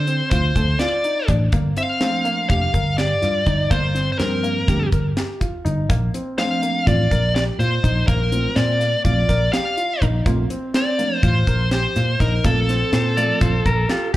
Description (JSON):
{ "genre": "progressive instrumental, band music in an uneven meter", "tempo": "247 BPM (eighths)", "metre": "9/8", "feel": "straight", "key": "unclear", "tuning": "A4 = 440 Hz", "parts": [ { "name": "dark smooth lead guitar", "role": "melody", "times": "0.0-14.1 s", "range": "A4 to F5", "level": "-22 LUFS", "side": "left 1 dB", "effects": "overdrive, slapback echo, digital delay" }, { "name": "dark grand piano", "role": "arpeggios", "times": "0.0-14.2 s", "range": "Bb3 to Bb4", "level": "-28 LUFS", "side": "left 1 dB", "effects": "slapback echo" }, { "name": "picked electric bass", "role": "bass", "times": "0.0-13.8 s", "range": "F1 to D3", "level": "-20 LUFS", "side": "equal", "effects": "none" }, { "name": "deep reggae drum kit", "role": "drums", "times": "0.1-14.2 s", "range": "hi-hat, kick drum, snare drum", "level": "-22 LUFS", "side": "equal", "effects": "none" }, { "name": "mellow tine electric piano", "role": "accompaniment", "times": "2.0-13.5 s", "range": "F3 to F4", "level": "-27 LUFS", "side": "right 3 dB", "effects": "fast stereo tremolo, slapback echo" }, { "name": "clean electric guitar", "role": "second line", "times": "12.9-14.2 s", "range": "F4 to D5", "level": "-23 LUFS", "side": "left 1 dB", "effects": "slapback echo" } ], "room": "small room ambience", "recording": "live gig heard through the venue's PA, club reverb", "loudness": "-17 LUFS", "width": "side -15 dB against mid", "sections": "0.0-14.2 A section", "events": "none", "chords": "0.0 Dm7; 1.5 Gm7; 5.9 Bbmaj7", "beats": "0.07 0.31 0.56 0.80 1.04 1.28 | 1.53 1.77 2.01 2.25 2.50 2.74 2.98 3.23 3.47 | 3.71 3.95 4.20 4.44 4.68 4.92 5.17 5.41 5.65 | 5.89 6.14 6.38 6.62 6.87 7.11 7.35 7.59 7.84 | 8.08 8.32 8.56 8.81 9.05 9.29 9.53 9.78 10.02 | 10.26 10.51 10.75 10.99 11.23 11.47 11.72 11.96 12.20 | 12.45 12.69 12.93 13.17 13.41 13.66 13.90 14.14" }